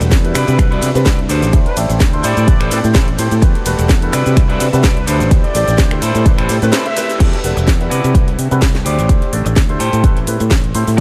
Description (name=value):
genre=filtered disco house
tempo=127 BPM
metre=4/4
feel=swing 55% on 16ths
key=unclear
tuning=A4 = 443 Hz
part: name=warm baby grand piano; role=accompaniment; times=0.0-11.0 s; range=G3 to F#5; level=-25 LUFS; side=equal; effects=phaser, sidechain pumping, low-pass filter
part: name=string machine, full ensemble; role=sustained chords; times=0.0-7.2 s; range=G3 to G5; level=-29 LUFS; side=equal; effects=ensemble chorus, sidechain pumping, low-pass filter
part: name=clean electric guitar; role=riff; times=0.0-11.0 s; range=D4 to D5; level=-25 LUFS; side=equal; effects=sidechain pumping, low-pass filter
part: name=overdriven fingered electric bass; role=bass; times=0.0-11.0 s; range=E1 to C3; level=-19 LUFS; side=equal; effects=tube saturation, sidechain pumping, low-pass filter
part: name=house drum kit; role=drums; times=0.0-11.0 s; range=cabasa, crash cymbal, finger snaps, hi-hat, ride cymbal, snare drum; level=-24 LUFS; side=equal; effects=sidechain pumping on hats, sidechain pumping on cymbals, sidechain pumping on perc
part: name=maracas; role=percussion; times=0.0-11.0 s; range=none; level=-35 LUFS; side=equal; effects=none
part: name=electronic kick drum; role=drums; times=0.1-11.0 s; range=none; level=-14 LUFS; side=equal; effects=none
part: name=mellow trumpet section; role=melody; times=0.4-7.2 s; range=B4 to E5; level=-28 LUFS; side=equal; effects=sidechain pumping, low-pass filter, delay
room=light reverb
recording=none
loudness=-13 LUFS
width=mono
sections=0.0-7.2 A section; 7.2-11.0 B section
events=drop 0.0-7.2; break 6.7-7.2; band accent 6.7; filter sweep 7.2-11.0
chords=0.4 Cmaj9#11; 1.3 Am7; 3.4 Em11; 4.1 Cmaj9#11; 5.1 D7sus4; 6.0 Am7; 7.2 Em11; 7.9 Cmaj9#11; 8.9 D7sus4; 9.8 Am7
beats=0.12 0.59 1.06 | 1.53 2.00 2.48 2.95 | 3.42 3.89 4.37 4.84 | 5.31 5.78 6.26 6.73 | 7.20 7.67 8.15 8.62 | 9.09 9.56 10.04 10.51 | 10.98